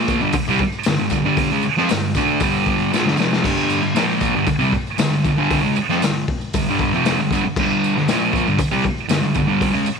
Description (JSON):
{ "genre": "garage rock duo or trio", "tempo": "117 BPM", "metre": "4/4", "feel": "straight", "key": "unclear", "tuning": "A4 = 440 Hz", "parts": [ { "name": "fuzz guitar", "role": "riff", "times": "0.0-9.9 s", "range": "F2 to D4", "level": "-17 LUFS", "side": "right 1 dB", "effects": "distortion" }, { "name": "raw garage drum kit", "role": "drums", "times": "0.1-9.7 s", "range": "crash cymbal, hi-hat, kick drum, snare drum", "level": "-22 LUFS", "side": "left 4 dB", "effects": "none" }, { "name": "tambourine", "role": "percussion", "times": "0.1-10.0 s", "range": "none", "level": "-36 LUFS", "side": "right 14 dB", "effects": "none" } ], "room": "light reverb, studio reverb", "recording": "1960s-style stereo", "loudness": "-16 LUFS", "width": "side -5 dB against mid", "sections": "0.0-10.0 A section", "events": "drum fill 2.9-3.4", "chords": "0.0 G5", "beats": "0.34 0.86 | 1.37 1.89 2.40 2.92 | 3.44 3.95 4.47 4.99 | 5.50 6.01 6.53 7.04 | 7.56 8.07 8.58 9.09 | 9.60" }